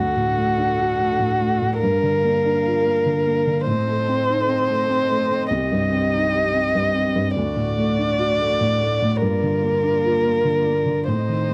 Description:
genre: neoclassical piano and strings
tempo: 97 BPM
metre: 3/4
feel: rubato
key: G minor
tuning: A4 = 440 Hz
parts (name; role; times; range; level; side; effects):
- muted violin; melody; 0.0-11.5 s; F#4 to Eb5; -23 LUFS; equal; none
- felt-muted upright piano; accompaniment; 0.0-11.5 s; C2 to G4; -24 LUFS; equal; none
- muted chamber string section; sustained chords; 0.0-11.5 s; A3 to F#5; -34 LUFS; equal; none
room: light reverb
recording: dry, close 1970s-style studio recording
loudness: -20 LUFS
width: mono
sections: 0.0-11.5 A section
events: none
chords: 0.0 D; 1.8 Gm7; 3.7 Adim; 5.5 Cm; 7.4 D; 9.2 Gm7

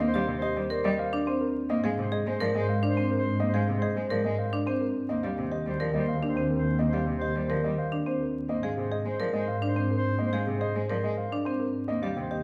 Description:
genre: classical, minimalist pattern music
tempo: 106 BPM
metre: 3/4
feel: straight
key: unclear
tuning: A4 = 440 Hz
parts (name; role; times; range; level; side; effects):
- dark baby grand piano; melody; 0.0-12.4 s; G4 to F5; -36 LUFS; equal; none
- warm cello; accompaniment; 0.0-12.3 s; C3 to Bb3; -36 LUFS; equal; none
- warm chamber double bass section; bass; 0.0-12.4 s; Eb2 to Ab2; -33 LUFS; equal; none
- warm clarinet; second line; 0.1-12.4 s; C5; -39 LUFS; equal; none
- marimba with medium hard mallets; arpeggios; 0.1-12.4 s; C4 to Bb4; -33 LUFS; equal; none
room: moderate recital hall reverb, RT60 1.6 s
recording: vinyl crackle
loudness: -28 LUFS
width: mono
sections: 0.0-12.4 A section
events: none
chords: 0.0 Eb69; 1.7 Ab69; 5.1 Eb69; 8.5 Ab69; 11.9 Eb69

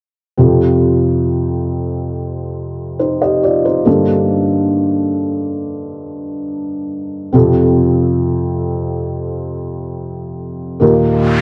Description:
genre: pop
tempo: 69 BPM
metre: 4/4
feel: straight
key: F mixolydian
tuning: A4 = 439 Hz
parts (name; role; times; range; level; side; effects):
- felt-muted upright piano; accompaniment; 0.4-11.4 s; Eb2 to Eb5; -16 LUFS; equal; none
- noise sweep; sound effects; 11.1-11.4 s; none; -24 LUFS; equal; none
room: moderate plate reverb, RT60 2.9 s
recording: worn, warbling old tape, cassette tape, warbly pitch drift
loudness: -16 LUFS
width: mono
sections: 0.4-11.4 A section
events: noise sweep 11.1-11.4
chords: 0.4 Fadd9; 3.9 Gmadd9; 7.3 Fadd9; 10.8 Eb

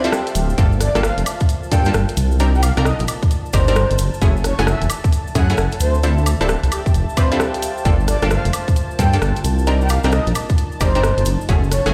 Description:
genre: UK garage, two-step garage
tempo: 132 BPM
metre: 4/4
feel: swing 64% on 16ths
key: G minor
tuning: A4 = 440 Hz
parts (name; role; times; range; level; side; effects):
- breathy flute-like synth lead; melody; 0.0-11.9 s; G4 to G5; -27 LUFS; equal; ensemble chorus, digital delay
- warm analog pad; sustained chords; 0.0-11.9 s; A5; -36 LUFS; equal; chorus, sidechain pumping
- punchy chord stab; stabs; 0.0-11.9 s; A3 to B4; -26 LUFS; equal; chorus, cassette tape, digital delay
- garage drum kit; drums; 0.0-11.9 s; hi-hat, rim click, woodblock; -27 LUFS; equal; studio reverb
- cabasa; percussion; 0.0-11.9 s; none; -36 LUFS; equal; none
- deep dark ambient pad; texture; 0.0-11.9 s; G#3 to F5; -34 LUFS; equal; chorus, built-in reverb, sidechain pumping
- dark detuned saw bass; bass; 0.4-11.9 s; D1 to G2; -20 LUFS; equal; none
- electronic kick drum; drums; 0.6-11.6 s; none; -19 LUFS; equal; studio reverb
room: light reverb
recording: played on a big sound system in a bare room, stone room reverb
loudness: -17 LUFS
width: mono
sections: 0.0-11.9 A section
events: break 0.0-0.6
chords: 0.0 Dm9; 0.6 Gm9; 2.4 Cm9; 4.0 F#m9; 5.8 Dm9; 7.9 Gm9; 9.7 Cm9; 11.3 F#m9

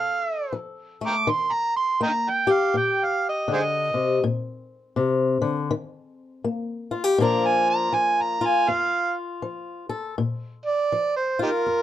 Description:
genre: acoustic country blues, solo or duo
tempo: 81 BPM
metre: 4/4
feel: swing 62% on 8ths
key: Bb major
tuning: A4 = 439 Hz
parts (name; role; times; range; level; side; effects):
- overdriven harmonica; melody; 0.0-11.8 s; Eb4 to D6; -22 LUFS; right 3 dB; none
- fingerpicked swing-style acoustic guitar; accompaniment; 0.0-11.8 s; F2 to A4; -24 LUFS; left 4 dB; none
room: light reverb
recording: dark, warm production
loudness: -21 LUFS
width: side -12 dB against mid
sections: 0.0-10.2 A section; 10.2-11.8 B section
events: harmonica solo 0.0-10.2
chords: 0.0 F; 1.3 Eb; 4.2 Bb; 5.7 Eb5; 7.2 Bb; 8.7 F; 10.2 Bb

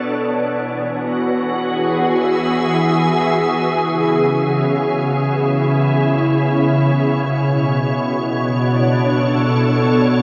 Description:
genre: ambient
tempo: free time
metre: none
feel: none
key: unclear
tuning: A4 = 441 Hz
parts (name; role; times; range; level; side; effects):
- soft additive organ-like pad; solo; 0.0-10.2 s; B2 to E5; -17 LUFS; equal; ensemble chorus, built-in reverb, diffuse ambient delay
room: wet huge ambient reverb, RT60 8.7 s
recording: dark, warm production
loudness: -17 LUFS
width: mono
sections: 0.3-10.2 A section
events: none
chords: 0.3 Eadd9; 3.8 C#m7; 7.3 Bm7

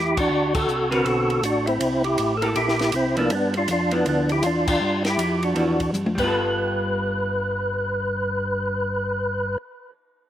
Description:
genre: soul jazz organ trio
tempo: 160 BPM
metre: 4/4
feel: swing 64% on 8ths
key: G mixolydian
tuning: A4 = 440 Hz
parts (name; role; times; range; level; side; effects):
- percussive tonewheel organ; melody; 0.0-9.6 s; Bb3 to B4; -22 LUFS; equal; slow rotary speaker, overdrive, chorus vibrato, slapback echo
- tonewheel organ; bass; 0.0-9.6 s; G1 to G2; -27 LUFS; equal; slow rotary speaker
- compact cocktail drum kit; drums; 0.2-6.2 s; crash cymbal, hi-hat, kick drum, ride cymbal, snare drum, toms; -29 LUFS; equal; none
- vintage hollow-body jazz guitar; accompaniment; 0.9-9.7 s; D3 to B4; -27 LUFS; equal; slapback echo
room: little or no reverb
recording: recorded outdoors, with no room sound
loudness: -20 LUFS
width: side -11 dB against mid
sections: 0.0-6.3 A section; 6.3-9.3 B section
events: band accent 0.5, 4.6; drum fill 5.9-6.3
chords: 0.3 D6; 1.8 C6; 3.3 G6; 6.1 G7; 6.3 G9

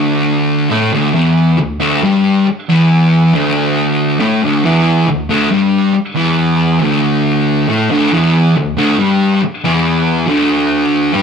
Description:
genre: rock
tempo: 138 BPM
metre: 4/4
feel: straight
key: unclear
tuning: A4 = 440 Hz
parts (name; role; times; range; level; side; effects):
- fuzz guitar; solo; 0.0-11.2 s; D2 to A3; -10 LUFS; equal; distortion
room: moderate stone room reverb, RT60 1.0 s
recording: rough rehearsal-room recording, warm saturation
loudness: -10 LUFS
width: side -6 dB against mid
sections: 0.0-11.2 A section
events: none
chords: 0.0 D5

